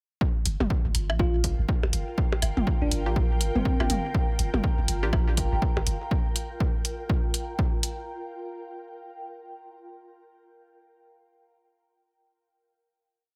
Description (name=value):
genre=minimal techno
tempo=122 BPM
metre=4/4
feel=swing 60% on 16ths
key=G minor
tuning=A4 = 440 Hz
part: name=electronic kick drum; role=drums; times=0.2-7.7 s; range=none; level=-28 LUFS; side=equal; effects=none
part: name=ethereal airy pad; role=texture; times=1.0-8.1 s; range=F4 to G5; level=-38 LUFS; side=equal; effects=ensemble chorus, built-in reverb, phaser, sidechain pumping
part: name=punchy sub bass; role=bass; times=0.5-6.0 s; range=G1 to Bb1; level=-30 LUFS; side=equal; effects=sidechain pumping
part: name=electronic hi-hat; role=drums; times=0.5-8.0 s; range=none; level=-32 LUFS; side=equal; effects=none
part: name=electronic toms and percussion blips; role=percussion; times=0.6-5.8 s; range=none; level=-33 LUFS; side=equal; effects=digital delay
part: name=bell-like FM electric piano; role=melody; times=1.2-4.0 s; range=C4 to F4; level=-35 LUFS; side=equal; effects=chorus, tremolo, digital delay
part: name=filtered dub chord stab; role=stabs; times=3.1-5.1 s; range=Bb3 to G4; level=-37 LUFS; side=equal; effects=phaser, digital delay
room=light reverb, digital ambience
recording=none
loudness=-26 LUFS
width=mono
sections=0.2-8.1 groove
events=none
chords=0.2 Gm7